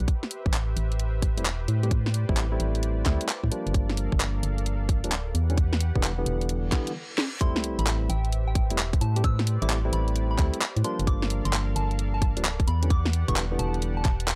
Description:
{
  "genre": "UK garage, two-step garage",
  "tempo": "131 BPM",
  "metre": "4/4",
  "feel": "swing 66% on 16ths",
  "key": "A minor",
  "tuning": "A4 = 435 Hz",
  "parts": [
    { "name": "warm analog pad", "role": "sustained chords", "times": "0.0-14.4 s", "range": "G4 to F#5", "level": "-43 LUFS", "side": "equal", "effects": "chorus, tremolo, sidechain pumping" },
    { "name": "organ-like FM bass", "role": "bass", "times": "0.0-14.4 s", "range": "D1 to A2", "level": "-28 LUFS", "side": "equal", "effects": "none" },
    { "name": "garage drum kit", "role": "drums", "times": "0.0-14.4 s", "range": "handclaps, hi-hat, snare drum", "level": "-31 LUFS", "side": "equal", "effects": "overdrive" },
    { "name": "electronic kick drum", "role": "drums", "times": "0.1-14.2 s", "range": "none", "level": "-27 LUFS", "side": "equal", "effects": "none" },
    { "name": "barky tine electric piano", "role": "stabs", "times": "1.4-14.0 s", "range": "D3 to G4", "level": "-35 LUFS", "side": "equal", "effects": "tape echo" },
    { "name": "reverse cymbal and sub drop", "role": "sound effects", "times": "6.7-9.2 s", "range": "none", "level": "-42 LUFS", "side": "equal", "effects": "none" },
    { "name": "soft synth bell", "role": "melody", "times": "7.4-14.1 s", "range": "G5 to E6", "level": "-38 LUFS", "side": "equal", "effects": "chorus, tape echo" }
  ],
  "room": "little or no reverb",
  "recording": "dry, gritty hardware recording, transformer saturation",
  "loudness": "-26 LUFS",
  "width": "mono",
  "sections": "0.0-7.4 A section; 7.4-14.4 B section",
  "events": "reverse cymbal 6.7-7.4; stop 7.0-7.4; drum fill 7.2; drop 7.4-14.4; impact 7.4-9.2",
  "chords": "0.1 Am7; 3.7 Gm7; 5.3 Em7; 7.4 Am7; 11.1 Gm7; 12.7 Em7",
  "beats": "| 0.08 0.54 1.00 1.45 | 1.91 2.37 2.83 3.29 | 3.74 4.20 4.66 5.12 | 5.58 6.03 6.49 6.95 | 7.41 7.87 8.32 8.78 | 9.24 9.70 10.16 10.61 | 11.07 11.53 11.99 12.45 | 12.90 13.36 13.82 14.28"
}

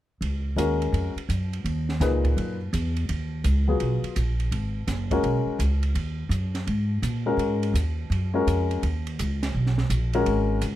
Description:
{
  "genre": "modal jazz",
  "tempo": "167 BPM",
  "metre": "4/4",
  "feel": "swing 65% on 8ths",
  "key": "G# dorian",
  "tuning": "A4 = 442 Hz",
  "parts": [
    { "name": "upright bass", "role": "bass", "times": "0.2-10.8 s", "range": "F#1 to A#2", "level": "-24 LUFS", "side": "equal", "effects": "none" },
    { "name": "compact cocktail drum kit", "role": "drums", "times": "0.2-10.7 s", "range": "hi-hat, kick drum, ride cymbal, snare drum", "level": "-35 LUFS", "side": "right 3 dB", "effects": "none" },
    { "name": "warm baby grand piano", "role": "accompaniment", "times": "0.6-10.6 s", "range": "A#2 to B4", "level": "-25 LUFS", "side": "left 3 dB", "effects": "none" }
  ],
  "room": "light reverb",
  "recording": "none",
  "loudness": "-23 LUFS",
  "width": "side -13 dB against mid",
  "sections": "0.2-10.8 A section",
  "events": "none",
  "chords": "0.2 G#9sus4",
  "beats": "| 0.22 0.58 0.94 1.29 | 1.65 2.01 2.37 2.73 | 3.09 3.45 3.81 4.16 | 4.52 4.88 5.24 5.60 | 5.96 6.32 6.67 7.03 | 7.39 7.75 8.11 8.47 | 8.82 9.18 9.54 9.90 | 10.26 10.62"
}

